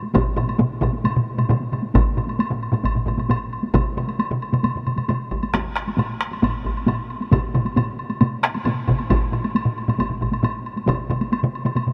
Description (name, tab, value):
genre	japanese traditional, taiko drum ensemble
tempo	134 BPM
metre	4/4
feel	straight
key	none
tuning	none
part	taiko ensemble	percussion	0.0-11.9 s	none	-28 LUFS	equal	none
part	taiko ensemble	percussion	0.1-10.5 s	none	-26 LUFS	equal	none
part	taiko ensemble	percussion	0.1-11.9 s	none	-26 LUFS	equal	none
part	taiko ensemble	percussion	0.1-11.0 s	none	-27 LUFS	equal	none
part	woodblock	percussion	0.1-11.9 s	none	-32 LUFS	equal	none
room	moderate huge ambient reverb, RT60 5.2 s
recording	none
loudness	-22 LUFS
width	mono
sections	0.0-1.9 A section; 1.9-11.9 B section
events	none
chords	none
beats	| 0.14 0.59 1.05 1.50 | 1.95 2.40 2.85 3.30 | 3.75 4.19 4.64 5.09 | 5.54 5.98 6.43 6.88 | 7.32 7.77 8.21 8.66 | 9.10 9.54 9.99 10.43 | 10.87 11.31 11.76